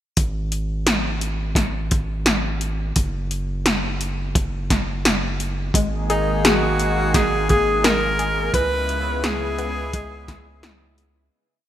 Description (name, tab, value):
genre	synthwave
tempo	86 BPM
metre	4/4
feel	straight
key	unclear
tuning	A4 = 441 Hz
part	round analog bass	bass	0.2-11.3 s	F#1 to C#2	-26 LUFS	equal	none
part	80s electronic pad drums	drums	0.2-11.1 s	hi-hat, snare drum	-22 LUFS	equal	none
part	kick drum	drums	0.2-10.4 s	none	-21 LUFS	equal	none
part	lush unison pad	sustained chords	5.8-11.3 s	C#3 to G#4	-26 LUFS	equal	chorus, sidechain pumping
part	analog pluck	arpeggios	5.8-10.8 s	G#3 to G#4	-28 LUFS	left 4 dB	chorus, ping-pong delay
part	bright tenor saxophone	melody	6.1-11.0 s	D#4 to B4	-23 LUFS	equal	digital delay
part	soft synth bell	second line	6.1-10.9 s	D#4 to B4	-27 LUFS	equal	chorus
room	moderate plate reverb, RT60 3.2 s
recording	bright 1980s-style digital production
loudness	-19 LUFS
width	side -11 dB against mid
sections	0.2-11.3 verse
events	fade-out 7.6-11.3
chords	0.2 N.C.; 5.7 G#sus2; 8.5 C#m7